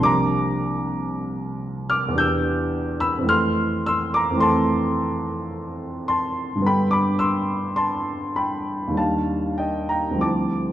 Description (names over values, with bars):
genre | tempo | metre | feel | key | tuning
classical, impressionist solo piano | 46-59 BPM | 3/4 | rubato | unclear | A4 = 441 Hz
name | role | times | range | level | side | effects
warm grand piano | solo | 0.0-10.7 s | C2 to G6 | -20 LUFS | equal | none
room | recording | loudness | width
wet recital hall reverb, RT60 1.5 s | dark, warm production | -20 LUFS | side -12 dB against mid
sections
0.0-10.7 A section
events
none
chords
0.1 C9sus4; 2.2 Em7; 3.3 Fmaj7; 6.6 Gadd9; 9.0 Ebmaj7; 10.2 Dm11